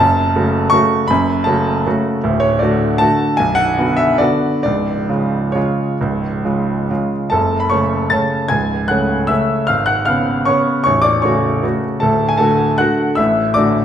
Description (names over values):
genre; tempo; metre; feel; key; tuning
classical, piano waltz; 126-170 BPM; 3/4; rubato; F# minor; A4 = 440 Hz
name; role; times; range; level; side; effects
clear baby grand piano; solo; 0.0-13.8 s; A0 to A6; -13 LUFS; equal; none
room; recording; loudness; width
wet recital hall reverb, RT60 1.6 s; none; -13 LUFS; side -9 dB against mid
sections
0.0-7.3 A section; 7.3-13.8 B section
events
none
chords
0.0 F#m; 2.2 D; 3.4 Bm; 4.7 C#; 7.3 F#m; 9.7 C#7/G#; 10.9 F#m/A; 12.0 D